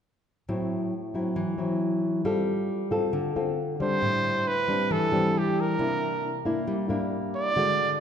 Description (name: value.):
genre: bossa nova.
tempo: 136 BPM.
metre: 4/4.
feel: straight.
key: A minor.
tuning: A4 = 440 Hz.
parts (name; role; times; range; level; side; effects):
nylon-string guitar; accompaniment; 0.5-8.0 s; A2 to A4; -26 LUFS; left 1 dB; none.
clear trumpet; melody; 3.8-8.0 s; G4 to D5; -26 LUFS; right 3 dB; none.
room: moderate concert hall reverb, RT60 1.9 s.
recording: recorded in a church or concert hall.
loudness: -24 LUFS.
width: side -8 dB against mid.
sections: 0.5-4.0 A section; 4.0-8.0 B section.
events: none.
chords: 0.5 Am6; 2.3 G9sus4; 4.0 Am11; 5.8 C9.